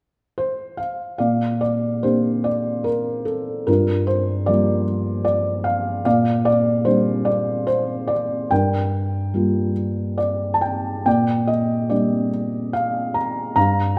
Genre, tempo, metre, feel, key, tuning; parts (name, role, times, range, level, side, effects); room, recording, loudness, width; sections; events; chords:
classical, lyrical solo piano; 68-77 BPM; 3/4; rubato; Bb major; A4 = 441 Hz
felt-muted upright piano; solo; 0.4-14.0 s; G2 to Bb5; -21 LUFS; equal
wet recital hall reverb, RT60 1.9 s; recorded in a church or concert hall; -21 LUFS; mono
0.0-1.2 A section; 1.2-14.0 B section
0.0 N.C.; 1.2 Bb69; 3.7 Gm7; 6.1 Bb69; 8.5 Gm7; 11.1 Bb69